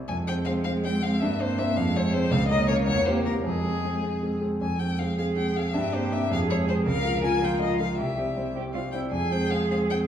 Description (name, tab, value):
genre	quick classical-period movement for piano trio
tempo	106 BPM (dotted quarters)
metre	6/8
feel	straight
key	F minor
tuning	A4 = 441 Hz
part	warm concert grand piano	accompaniment	0.0-10.1 s	C2 to C5	-25 LUFS	equal	none
part	muted violin	melody	0.1-10.0 s	Ab4 to Ab5	-30 LUFS	left 4 dB	none
part	muted cello	second line	0.1-10.1 s	Ab3 to Bb4	-31 LUFS	right 4 dB	none
room	wet recital hall reverb, RT60 1.7 s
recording	small room ambience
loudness	-23 LUFS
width	side -9 dB against mid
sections	0.0-4.6 A section; 4.6-10.1 A section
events	none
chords	0.1 Fm; 1.2 C5/G; 1.8 Fm; 2.3 Bbm/Db; 2.9 C7/E; 3.5 Fm; 5.7 C5/G; 6.3 Fm; 6.9 Bbm/Db; 8.0 C; 9.1 Fm